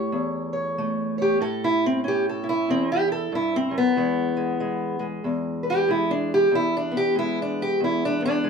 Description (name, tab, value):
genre	acoustic country blues, solo or duo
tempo	94 BPM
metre	4/4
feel	swing 60% on 8ths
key	unclear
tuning	A4 = 442 Hz
part	fingerpicked steel-string acoustic guitar	solo	0.0-8.5 s	E2 to C#5	-21 LUFS	equal	none
room	moderate studio reverb, RT60 0.6 s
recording	minimal, uncompressed stereo recording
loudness	-21 LUFS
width	side -6 dB against mid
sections	0.0-8.5 A section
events	steel-string acoustic guitar solo 0.0-8.5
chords	0.0 A7; 4.0 E7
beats	0.13 0.77 | 1.41 2.04 2.68 3.32 | 3.96 4.60 5.24 5.87 | 6.51 7.15 7.79 8.44